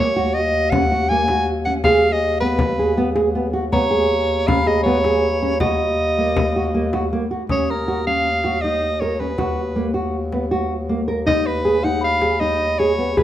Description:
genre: contemporary instrumental, chamber music in an uneven meter.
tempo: 159 BPM.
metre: 5/4.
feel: straight.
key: Eb minor.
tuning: A4 = 440 Hz.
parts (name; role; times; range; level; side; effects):
warm soprano saxophone; melody; 0.0-13.2 s; Bb4 to Ab5; -20 LUFS; right 1 dB; none.
nylon-string guitar; arpeggios; 0.0-13.2 s; Bb3 to Bb4; -21 LUFS; right 1 dB; none.
breathy bass clarinet; bass; 0.0-13.2 s; Db2 to Eb2; -23 LUFS; left 2 dB; none.
frame drum; percussion; 0.5-13.2 s; none; -26 LUFS; left 2 dB; none.
glockenspiel with rubber mallets; texture; 3.7-8.8, 12.0-13.2 s; Bb5 to Eb6; -29 LUFS; left 2 dB; none.
room: moderate recital hall reverb, RT60 1.4 s.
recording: none.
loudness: -17 LUFS.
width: side -12 dB against mid.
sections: 0.0-7.5 A section; 7.5-13.2 B section.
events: none.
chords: 0.0 Ebm; 1.8 B6/D#; 3.7 Db5/Eb; 5.6 Ebm; 7.5 Eb7(no3); 9.4 Bmaj7/D#; 11.3 Abm/Eb.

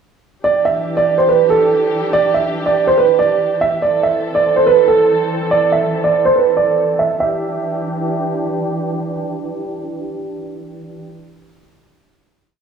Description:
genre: hip hop, drill.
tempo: 142 BPM.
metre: 4/4.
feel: half-time.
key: E minor.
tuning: A4 = 439 Hz.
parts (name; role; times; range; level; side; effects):
dark grand piano; melody; 0.4-8.4 s; A4 to E5; -13 LUFS; right 4 dB; tape echo.
dark studio string section; sustained chords; 0.4-11.1 s; E3 to A4; -21 LUFS; equal; none.
room: light reverb, studio ambience.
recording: dry, gritty hardware recording, low-pass filter, small room ambience.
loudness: -13 LUFS.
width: side -6 dB against mid.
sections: 0.4-7.2 breakdown; 7.2-10.6 final chord.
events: none.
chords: 0.4 Em7; 3.8 Am; 7.2 Em7.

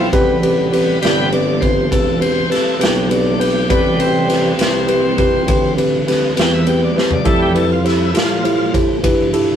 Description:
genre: slow blues.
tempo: 67 BPM (dotted quarters).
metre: 12/8.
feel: straight.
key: A minor.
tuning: A4 = 440 Hz.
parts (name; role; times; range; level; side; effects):
mellow tine electric piano; accompaniment; 0.0-9.6 s; C4 to G5; -16 LUFS; equal; none.
bright tonewheel organ; sustained chords; 0.0-8.7 s; C3 to G5; -21 LUFS; left 1 dB; slow rotary speaker, overdrive.
mellow tuba; bass; 0.0-9.6 s; E1 to A2; -20 LUFS; right 1 dB; none.
raw garage drum kit; drums; 0.1-9.5 s; kick drum, ride cymbal, snare drum, toms; -18 LUFS; equal; none.
room: moderate studio reverb, RT60 0.5 s.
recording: rough rehearsal-room recording.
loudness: -13 LUFS.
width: side -9 dB against mid.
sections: 0.0-9.6 A section.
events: tonewheel organ solo 0.0-9.6; drum fill 7.0.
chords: 0.1 Am7; 7.3 Fmaj7.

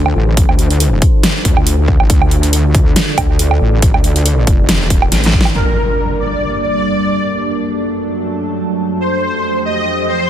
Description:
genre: heavy wobble dubstep.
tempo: 139 BPM.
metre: 4/4.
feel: swing 55% on 16ths, half-time.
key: unclear.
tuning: A4 = 440 Hz.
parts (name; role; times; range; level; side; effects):
evolving wavetable pad; sustained chords; 0.0-10.3 s; F2 to D5; -19 LUFS; right 1 dB; chorus, built-in reverb, sidechain pumping.
wobble bass; bass; 0.0-5.5 s; Eb1 to D2; -13 LUFS; equal; chorus, overdrive.
dubstep drum kit; drums; 0.1-5.5 s; hi-hat, snare drum, woodblock; -16 LUFS; right 2 dB; overdrive.
electronic kick drum; drums; 0.4-5.4 s; none; -13 LUFS; equal; none.
soft supersaw; melody; 5.6-10.3 s; Bb4 to Eb5; -18 LUFS; equal; ensemble chorus, ping-pong delay.
impact; sound effects; 5.6-7.3 s; none; -20 LUFS; equal; none.
room: light reverb.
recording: dense, heavily limited modern master.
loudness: -11 LUFS.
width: side -10 dB against mid.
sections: 0.0-5.6 A section; 5.6-10.3 B section.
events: drop 0.0-5.6; drum fill 5.1-5.6; impact 5.6-7.3.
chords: 0.0 Dm7; 5.6 Gm; 7.3 D/F#; 9.0 Fadd9.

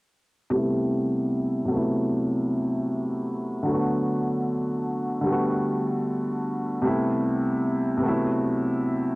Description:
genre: hip hop.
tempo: 76 BPM.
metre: 4/4.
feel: swing 56% on 16ths.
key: A dorian.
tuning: A4 = 441 Hz.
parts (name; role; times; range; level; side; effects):
felt-muted upright piano; solo; 0.5-9.2 s; C3 to F#4; -23 LUFS; equal; cassette tape, low-pass filter.
room: moderate booth ambience, RT60 0.2 s.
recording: home recording on cassette.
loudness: -23 LUFS.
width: side -23 dB against mid.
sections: 0.5-9.2 A section.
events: filter sweep on felt piano 0.5-9.2.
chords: 0.5 Am9; 1.7 Am69/C; 3.7 Bm7; 5.3 Gmaj9/D; 6.8 Am9; 8.0 D13/C (rootless).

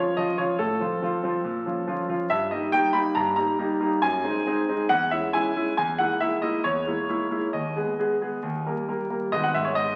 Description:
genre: classical-period piano sonatina.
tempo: 138 BPM.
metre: 4/4.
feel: rubato.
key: G# minor.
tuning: A4 = 440 Hz.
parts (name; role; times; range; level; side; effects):
clear concert grand piano; solo; 0.0-10.0 s; G#1 to B5; -25 LUFS; equal; none.
room: wet recital hall reverb, RT60 1.7 s.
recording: very old 78 rpm record, vinyl crackle.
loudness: -25 LUFS.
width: mono.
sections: 0.0-9.3 A section.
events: none.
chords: 0.0 Bbm (rootless); 0.6 F/A; 1.4 Bbm; 2.3 D#/G; 4.0 G#7/F#; 4.9 C#m/E; 5.8 A#m7b5/E; 7.5 G#m/D#; 8.4 D#; 9.3 G#m.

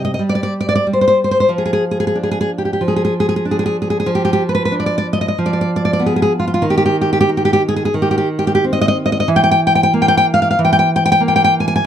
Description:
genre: romantic piece for solo classical guitar.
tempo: 93 BPM.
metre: 4/4.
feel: rubato.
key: unclear.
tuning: A4 = 440 Hz.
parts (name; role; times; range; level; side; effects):
nylon-string guitar; solo; 0.0-11.9 s; C3 to Ab5; -13 LUFS; equal; none.
room: light reverb.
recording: dark, warm production.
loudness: -13 LUFS.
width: side -9 dB against mid.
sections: 0.0-11.9 A section.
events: none.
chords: 0.0 C5; 1.5 Fm6; 4.1 Fdim7(no3); 6.7 Cm/Eb; 9.3 Edim.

